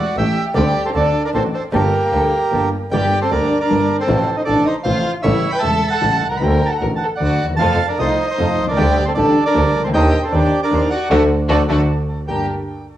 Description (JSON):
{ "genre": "tango", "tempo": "154 BPM", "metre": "3/4", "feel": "rubato", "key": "G minor", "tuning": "A4 = 442 Hz", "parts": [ { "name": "bandoneon", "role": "melody", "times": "0.0-12.5 s", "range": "F#4 to B5", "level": "-19 LUFS", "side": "right 2 dB", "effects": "plate reverb, tape echo" }, { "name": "warm studio violin section", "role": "second line", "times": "0.0-12.5 s", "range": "A3 to B4", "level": "-22 LUFS", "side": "left 2 dB", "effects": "cassette tape, plate reverb" }, { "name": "warm concert grand piano", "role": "accompaniment", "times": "0.2-12.5 s", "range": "E1 to A4", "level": "-22 LUFS", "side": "left 2 dB", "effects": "cassette tape, plate reverb" }, { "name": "muted studio string section", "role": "stabs", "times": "0.2-2.7, 7.6-12.4 s", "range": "A3 to C5", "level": "-24 LUFS", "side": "right 2 dB", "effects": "cassette tape, plate reverb" }, { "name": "clear double bass", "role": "bass", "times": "0.2-12.4 s", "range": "E1 to F2", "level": "-20 LUFS", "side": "right 1 dB", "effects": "none" } ], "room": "moderate studio reverb, RT60 0.6 s", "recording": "home recording on cassette, small room ambience", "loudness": "-14 LUFS", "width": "side -12 dB against mid", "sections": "0.0-2.9 A section; 2.9-12.3 B section", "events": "band accent 11.1-12.3", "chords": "0.0 A7; 0.6 D7sus4; 0.9 D7; 1.7 Gmadd9; 4.1 F/A; 5.2 A7; 6.4 D; 7.6 F; 8.8 Dsus4; 9.9 Cmadd9/Eb; 11.1 D; 12.3 Gm" }